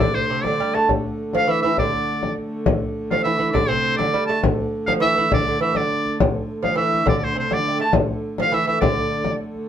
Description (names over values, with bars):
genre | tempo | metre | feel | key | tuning
medieval dance | 136 BPM (dotted quarters) | 6/8 | straight | D minor | A4 = 440 Hz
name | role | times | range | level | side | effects
bright shawm | melody | 0.0-9.3 s | C5 to A5 | -22 LUFS | right 1 dB | none
lute | second line | 0.0-9.3 s | C3 to A3 | -25 LUFS | right 3 dB | none
mellow alto recorder | second line | 0.0-2.4, 6.6-9.4 s | C5 to A5 | -27 LUFS | equal | none
dark hurdy-gurdy | drone | 0.0-9.7 s | D3 to A3 | -27 LUFS | right 1 dB | none
frame drum | percussion | 0.0-9.6 s | none | -22 LUFS | left 3 dB | none
room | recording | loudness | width
wet small room reverb, RT60 0.5 s | band playing live in one room | -18 LUFS | side -9 dB against mid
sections
0.0-2.7 A section; 2.7-9.7 A section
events
speeding up 0.0-9.7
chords
none